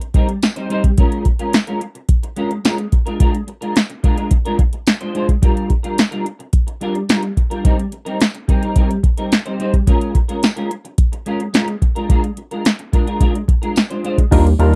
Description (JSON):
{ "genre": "early-eighties boogie funk", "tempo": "108 BPM", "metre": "4/4", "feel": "straight", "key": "unclear", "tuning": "A4 = 441 Hz", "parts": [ { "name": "semi-hollow electric guitar", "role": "riff", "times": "0.0-14.8 s", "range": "G3 to C5", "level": "-23 LUFS", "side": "equal", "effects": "ensemble chorus" }, { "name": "electro analog drum machine", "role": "drums", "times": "0.0-14.7 s", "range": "crash cymbal, hi-hat, kick drum, snare drum", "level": "-17 LUFS", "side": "equal", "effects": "none" }, { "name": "tambourine", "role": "percussion", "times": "0.4-13.9 s", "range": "none", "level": "-33 LUFS", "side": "equal", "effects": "none" }, { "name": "barky tine electric piano", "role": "accompaniment", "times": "14.3-14.8 s", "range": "G3 to Bb4", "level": "-19 LUFS", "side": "equal", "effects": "phaser" }, { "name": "rubbery square bass", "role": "bass", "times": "14.3-14.8 s", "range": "Eb2", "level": "-14 LUFS", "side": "equal", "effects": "none" } ], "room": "little or no reverb", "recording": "dry, close 1970s-style studio recording", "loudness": "-17 LUFS", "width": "mono", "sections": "0.0-14.3 A section", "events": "none", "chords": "0.0 Eb6/G; 1.0 Db6; 2.9 Bb7; 5.4 Gm7; 7.6 Eb6/G; 9.9 Db6; 11.8 Bb7" }